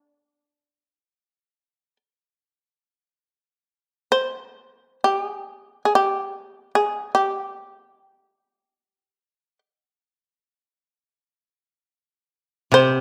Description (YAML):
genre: japanese traditional, Japanese chamber music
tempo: free time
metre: none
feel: none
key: unclear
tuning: A4 = 440 Hz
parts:
  - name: shamisen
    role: melody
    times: 0.0-13.0 s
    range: D4 to C5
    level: -21 LUFS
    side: equal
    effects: none
  - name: koto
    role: accompaniment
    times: 12.7-13.0 s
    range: C3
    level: -21 LUFS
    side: equal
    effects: none
room: moderate recital hall reverb, RT60 1.4 s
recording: none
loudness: -22 LUFS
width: mono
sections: 0.0-13.0 A section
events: none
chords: none